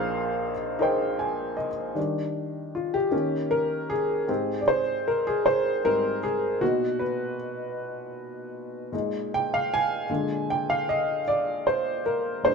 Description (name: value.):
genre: gospel.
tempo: 52 BPM (dotted quarters).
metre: 6/8.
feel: straight.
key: Eb major.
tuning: A4 = 440 Hz.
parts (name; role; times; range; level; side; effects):
warm upright piano; solo; 0.0-12.5 s; Bb1 to Ab5; -24 LUFS; equal; none.
room: moderate stone room reverb, RT60 1.1 s.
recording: band playing live in one room.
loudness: -24 LUFS.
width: side -5 dB against mid.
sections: 0.0-2.0 A section; 2.0-12.5 B section.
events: upright piano fill 0.8-2.0; upright piano solo 2.0-12.5.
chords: 0.0 Bb9sus4; 2.0 Ebmaj7; 3.1 Eb5; 4.3 Abmaj7; 6.6 Bmaj7; 8.9 Bb7sus4; 10.1 Bb7.